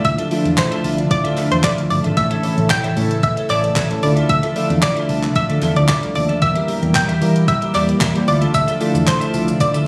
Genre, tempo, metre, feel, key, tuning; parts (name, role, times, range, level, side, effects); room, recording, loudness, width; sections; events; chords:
dance-pop; 113 BPM; 4/4; straight; D minor; A4 = 440 Hz
analog pluck; melody; 0.0-9.9 s; C5 to G5; -23 LUFS; equal; chorus
chorused polysynth; accompaniment; 0.0-9.9 s; E3 to C5; -25 LUFS; equal; sidechain pumping
airy breathy pad; sustained chords; 0.0-9.9 s; Bb2 to E5; -25 LUFS; equal; chorus, sidechain pumping
clean electric guitar; riff; 0.0-9.9 s; F4 to E5; -30 LUFS; equal; analog chorus
vintage muted fingered electric bass; bass; 0.0-9.8 s; G1 to E3; -22 LUFS; equal; sidechain pumping
gated 80s digital drum machine; drums; 0.0-9.9 s; handclaps, hi-hat, kick drum, shaker; -24 LUFS; equal; gated reverb, overdrive
group handclap; percussion; 0.6-9.2 s; -35 LUFS; equal
light reverb; recorded on a phone in the room, studio reverb, compression; -17 LUFS; mono
0.0-9.9 A section
0.0 Dmadd9; 2.2 A; 4.0 Dmadd9; 6.4 Edim; 8.3 Dmadd9